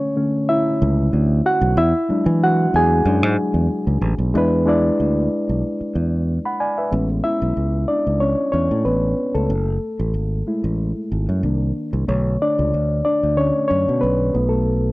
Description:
lush 1970s-style soul; 93 BPM; 4/4; swing 54% on 16ths; A major; A4 = 442 Hz
reed electric piano; accompaniment; 0.0-14.9 s; D3 to B5; -19 LUFS; equal
fingered electric bass; bass; 0.8-14.9 s; F#1 to E3; -19 LUFS; equal
light reverb; -17 LUFS; side -20 dB against mid
0.0-4.3 A section; 4.3-6.9 B section; 6.9-14.9 C section
reed electric piano solo 0.0-4.3, 6.9-14.9
0.0 Bm7 (rootless); 1.8 E7; 6.9 Amaj7; 9.5 F#m9; 11.4 Cm7; 12.1 Bm7; 14.3 Esus4 (rootless)

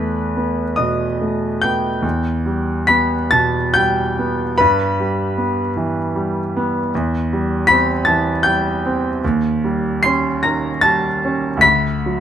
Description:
classical, romantic nocturne for solo piano; 45-53 BPM (dotted quarters); 6/8; rubato; E minor; A4 = 436 Hz
clear concert grand piano; solo; 0.0-12.2 s; D2 to C7; -15 LUFS; equal
light reverb; minimal, uncompressed stereo recording; -15 LUFS; side -9 dB against mid
0.0-12.2 A section
0.0 B7/E; 2.0 Em; 4.6 Em/G; 6.9 C/E; 9.2 Eb7; 11.6 D

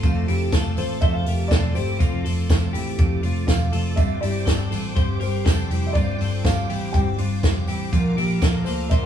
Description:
jangly indie pop; 122 BPM; 4/4; straight; F major; A4 = 439 Hz
fingerpicked steel-string acoustic guitar; accompaniment; 0.0-9.1 s; G2 to F4; -28 LUFS; right 3 dB
string machine, violins; sustained chords; 0.0-9.1 s; A4 to D6; -36 LUFS; equal; ensemble chorus
twelve-string electric guitar; arpeggios; 0.0-9.1 s; C4 to C5; -30 LUFS; left 2 dB; vibrato effect
vintage muted picked electric bass; bass; 0.0-9.1 s; E1 to D2; -24 LUFS; left 1 dB
compact cocktail drum kit; drums; 0.0-9.0 s; hi-hat, kick drum, snare drum; -22 LUFS; equal
tambourine; percussion; 0.0-9.0 s; -44 LUFS; right 4 dB
dark upright piano; melody; 0.8-9.1 s; C5 to G5; -30 LUFS; right 1 dB
wet stone room reverb, RT60 1.0 s; band playing live in one room, small room ambience; -19 LUFS; side -9 dB against mid
0.0-9.1 A section
0.0 F; 4.0 Gsus4; 7.9 Bb

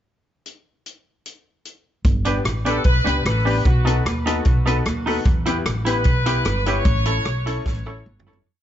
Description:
ska; 150 BPM; 4/4; straight; G lydian; A4 = 440 Hz
swinging big-band drum kit; drums; 0.5-8.4 s; hi-hat, kick drum, rim click, snare drum, toms; -22 LUFS; equal
upright bass; bass; 2.0-8.4 s; G1 to E2; -22 LUFS; equal
semi-hollow electric guitar; accompaniment; 2.3-8.4 s; D4 to C#5; -26 LUFS; right 3 dB
clear upright piano; stabs; 2.3-8.4 s; B3 to C#5; -27 LUFS; left 4 dB
warm horn section; melody; 2.7-7.8 s; F#4 to C#5; -26 LUFS; left 1 dB; tube saturation, tape echo
little or no reverb; nothing above 7.7 kHz; -17 LUFS; side -11 dB against mid
0.5-2.1 pickup bar; 2.1-8.5 head
fade-out 6.9-8.5; drum fill 7.7-8.5
0.5 N.C.; 2.1 G; 3.6 B7; 5.2 Em; 6.9 A

